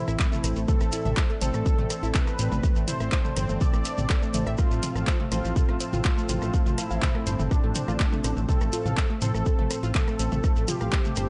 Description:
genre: melodic techno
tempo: 123 BPM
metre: 4/4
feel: straight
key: unclear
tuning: A4 = 440 Hz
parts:
  - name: unison lead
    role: melody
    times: 0.0-11.3 s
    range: D4 to D5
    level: -36 LUFS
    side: equal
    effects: sidechain pumping, tape echo
  - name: dark analog pad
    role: sustained chords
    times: 0.1-11.3 s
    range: C4 to A5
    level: -42 LUFS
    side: equal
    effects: chorus, sidechain pumping
  - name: unison pluck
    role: arpeggios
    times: 0.0-11.2 s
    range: A3 to F5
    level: -37 LUFS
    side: equal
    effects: sidechain pumping, tape echo
  - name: analog synth brass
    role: stabs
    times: 0.0-11.3 s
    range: A2 to C4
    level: -36 LUFS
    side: equal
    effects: chorus, sidechain pumping, tape echo
  - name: fat analog bass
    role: bass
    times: 0.1-11.3 s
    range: G1 to A1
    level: -30 LUFS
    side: equal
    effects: sidechain pumping
  - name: house drum kit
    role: drums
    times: 0.1-11.3 s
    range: handclaps, hi-hat, rim click, toms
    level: -35 LUFS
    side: equal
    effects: studio reverb
  - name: shekere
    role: percussion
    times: 0.1-11.3 s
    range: none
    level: -41 LUFS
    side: equal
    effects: none
  - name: electronic kick drum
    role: drums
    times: 0.2-11.0 s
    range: none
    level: -26 LUFS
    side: equal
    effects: studio reverb
room: little or no reverb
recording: dark, warm production, nothing above 10.4 kHz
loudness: -25 LUFS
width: mono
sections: 0.0-11.3 A section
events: none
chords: 0.0 Am; 4.6 F

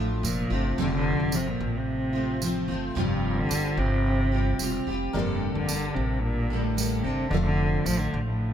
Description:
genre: acoustic pop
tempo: 110 BPM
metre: 4/4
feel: straight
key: F major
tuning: A4 = 444 Hz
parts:
  - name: warm cello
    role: melody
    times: 0.0-8.5 s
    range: G2 to F3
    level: -28 LUFS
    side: equal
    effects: tape echo
  - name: picked steel-string acoustic guitar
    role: accompaniment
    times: 0.0-8.5 s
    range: F2 to A4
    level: -29 LUFS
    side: equal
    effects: double-tracked left and right
  - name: upright bass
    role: bass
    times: 0.0-8.5 s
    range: E1 to A1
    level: -29 LUFS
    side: equal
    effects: none
  - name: tambourine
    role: percussion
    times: 0.2-8.0 s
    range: none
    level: -33 LUFS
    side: right 8 dB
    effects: none
  - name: warm upright piano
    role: accompaniment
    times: 5.1-8.5 s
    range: D4 to D5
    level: -38 LUFS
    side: left 6 dB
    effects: plate reverb
room: light reverb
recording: none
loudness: -24 LUFS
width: side -9 dB against mid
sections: 0.0-8.5 A section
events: none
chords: 0.0 Dm/F; 0.8 F; 3.0 Csus4/F; 5.1 Gmadd9/F; 7.3 Dm/F

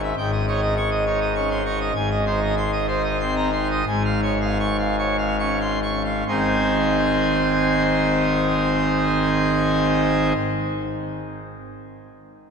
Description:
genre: classical, organ toccata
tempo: 65-102 BPM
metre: 3/4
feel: straight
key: Ab major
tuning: A4 = 438 Hz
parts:
  - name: pipe organ, full organ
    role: solo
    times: 0.0-10.3 s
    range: Ab1 to Db6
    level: -19 LUFS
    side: equal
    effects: none
room: wet cathedral reverb, RT60 5.2 s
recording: minimal, uncompressed stereo recording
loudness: -19 LUFS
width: side -6 dB against mid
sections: 0.0-6.3 A section; 6.3-11.8 B section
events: slowing down 1.1-6.3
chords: 0.2 Eb7/Ab; 2.0 Ab; 3.9 Db/Ab; 6.3 Ab

